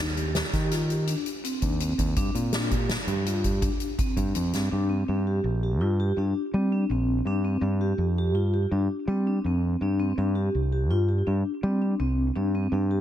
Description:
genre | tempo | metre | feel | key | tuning
progressive instrumental, band music in an uneven meter | 165 BPM | 7/4 | straight | unclear | A4 = 439 Hz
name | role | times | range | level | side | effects
vibraphone with soft mallets | arpeggios | 0.0-13.0 s | C4 to G4 | -29 LUFS | left 1 dB | tape echo
overdriven fingered electric bass | bass | 0.0-13.0 s | Bb1 to G3 | -25 LUFS | equal | none
soft-mallet drum kit | drums | 0.2-4.6 s | hi-hat, kick drum, snare drum | -28 LUFS | equal | none
room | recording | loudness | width
little or no reverb | none | -23 LUFS | side -11 dB against mid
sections
0.0-4.7 A section; 4.7-13.0 B section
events
none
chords
0.0 Eb; 2.2 Gm; 4.7 Bb69; 7.3 Fsus2; 12.4 Gsus4

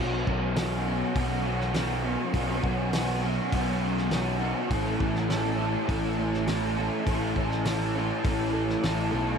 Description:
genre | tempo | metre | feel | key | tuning
rock, shoegaze and dream pop | 102 BPM | 4/4 | straight | unclear | A4 = 440 Hz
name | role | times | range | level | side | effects
crunchy overdriven guitar | riff | 0.0-9.4 s | A2 to A4 | -27 LUFS | equal | ensemble chorus
fuzz picked electric bass | bass | 0.0-9.4 s | A1 to B1 | -30 LUFS | equal | overdrive
loose indie drum kit | drums | 0.3-9.0 s | hi-hat, kick drum, snare drum | -33 LUFS | equal | none
room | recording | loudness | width
moderate huge ambient reverb, RT60 7.1 s | dreamy mix soaked in reverb | -25 LUFS | side -6 dB against mid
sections
0.0-9.4 A section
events
none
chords
0.0 Bsus2; 4.7 A

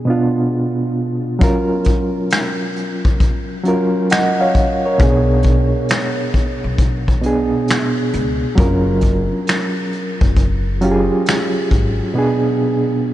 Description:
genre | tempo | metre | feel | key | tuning
lo-fi hip hop | 67 BPM | 4/4 | swing 65% on 16ths | F# major | A4 = 440 Hz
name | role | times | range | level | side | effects
reed electric piano | accompaniment | 0.0-13.1 s | B2 to F#5 | -17 LUFS | right 1 dB | overdrive, fast tremolo, low-pass filter
vintage brush drum kit | drums | 1.4-12.0 s | finger snaps, hi-hat, kick drum, snare drum | -18 LUFS | left 1 dB | vintage 12-bit sampler grit
upright bass | bass | 5.0-12.0 s | F#1 to C#2 | -19 LUFS | left 1 dB | none
room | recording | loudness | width
light reverb, studio reverb | nothing above 10.4 kHz | -14 LUFS | side -14 dB against mid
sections
0.0-13.1 A section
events
drums muted 12.2-13.1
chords
0.0 Bm6; 1.4 F#maj7; 5.0 Bm6; 8.6 F#maj7; 12.2 Bm6

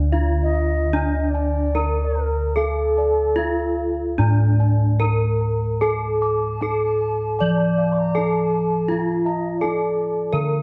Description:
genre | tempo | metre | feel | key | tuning
Javanese gamelan | 74-87 BPM | 4/4 | straight | D pelog | A4 = 438 Hz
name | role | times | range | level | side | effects
gamelan-type bronze metallophone | melody | 0.0-10.6 s | D4 to D5 | -25 LUFS | equal | none
gamelan-type bossed gongs | arpeggios | 0.0-10.6 s | D5 to D6 | -35 LUFS | equal | none
gamelan-type bronze metallophone | arpeggios | 0.0-10.6 s | D5 to D6 | -37 LUFS | equal | none
gamelan-type bossed gongs | bass | 0.0-10.6 s | D2 to A4-30c | -23 LUFS | equal | none
mellow bansuri | second line | 0.4-10.6 s | A4-27c to D6 | -31 LUFS | equal | none
room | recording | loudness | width
wet recital hall reverb, RT60 1.7 s | dark, warm production | -21 LUFS | mono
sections
0.0-10.6 A section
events
none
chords
none

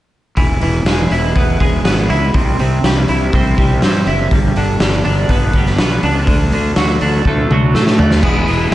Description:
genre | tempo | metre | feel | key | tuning
quiet-loud alternative rock | 122 BPM | 4/4 | straight | unclear | A4 = 439 Hz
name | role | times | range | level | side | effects
twelve-string electric guitar | arpeggios | 0.4-8.7 s | G2 to E4 | -17 LUFS | right 2 dB | lush chorus, digital delay
fuzz fingered electric bass | bass | 0.4-8.7 s | E1 to A2 | -17 LUFS | equal | overdrive
raw garage drum kit | drums | 0.4-8.7 s | crash cymbal, hi-hat, kick drum, snare drum, toms | -15 LUFS | equal | none
clear cello | melody | 7.7-8.7 s | E3 to A3 | -17 LUFS | equal | none
room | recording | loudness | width
light reverb, small room ambience | nothing above 10.7 kHz | -12 LUFS | side -15 dB against mid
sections
0.4-8.2 A section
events
drum fill 7.2-8.2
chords
0.4 E; 2.3 C; 4.3 G; 6.3 D; 8.2 E

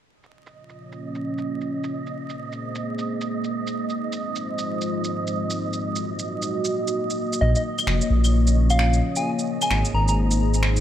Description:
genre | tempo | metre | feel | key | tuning
future garage | 131 BPM | 4/4 | swing 62% on 16ths | Bb minor | A4 = 440 Hz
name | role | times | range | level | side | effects
deep dark ambient pad | sustained chords | 0.8-10.8 s | Ab3 to Eb5 | -26 LUFS | left 1 dB | chorus, built-in reverb
wind-like tuned noise texture | texture | 0.6-10.8 s | Eb5 | -33 LUFS | right 6 dB | built-in reverb
electronic shaker, claves and finger snaps | drums | 0.2-10.8 s | none | -29 LUFS | right 1 dB | low-pass filter on perc, studio ambience, low-pass filter on snare
soft struck synth lead | melody | 7.4-10.1 s | Eb5 to Bb5 | -27 LUFS | equal | chorus, ping-pong delay
dark detuned saw bass | bass | 7.4-10.8 s | F1 to Bb1 | -19 LUFS | equal | tube saturation
room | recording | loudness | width
light reverb | vinyl crackle | -21 LUFS | side -11 dB against mid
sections
0.1-10.8 A section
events
filter sweep on ambient pad 0.1-10.8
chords
0.1 Bbm; 1.9 Abadd9; 3.8 Fm7; 5.6 Ebm; 7.4 Bbm; 9.3 Abadd9

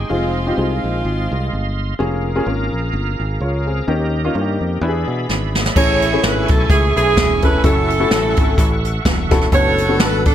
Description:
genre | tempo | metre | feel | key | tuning
uptempo gospel | 127 BPM | 4/4 | swing 56% on 8ths | A major from 5.8 s | A4 = 440 Hz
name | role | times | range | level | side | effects
clear saxophone section | melody | 0.0-1.7, 5.8-10.3 s | Ab3 to C#5 | -18 LUFS | right 2 dB | none
bright tonewheel organ | sustained chords | 0.0-10.3 s | Ab3 to C#6 | -27 LUFS | right 3 dB | fast rotary speaker, overdrive, chorus vibrato
fingered electric bass | bass | 0.0-10.3 s | E1 to B2 | -21 LUFS | equal | none
warm upright piano | accompaniment | 0.1-10.3 s | A2 to Db5 | -21 LUFS | left 2 dB | none
jazz brush drum kit | drums | 5.3-10.3 s | crash cymbal, hi-hat, kick drum, snare drum | -16 LUFS | equal | none
room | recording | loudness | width
little or no reverb | none | -15 LUFS | side -10 dB against mid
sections
0.0-5.8 A section; 5.8-10.3 B section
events
drum fill 5.3-5.8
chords
0.1 Fm7; 2.0 Bbm7/F; 3.9 Eb7; 4.8 E7; 5.8 Amaj7; 7.6 F#m7; 9.5 Bm7/F#

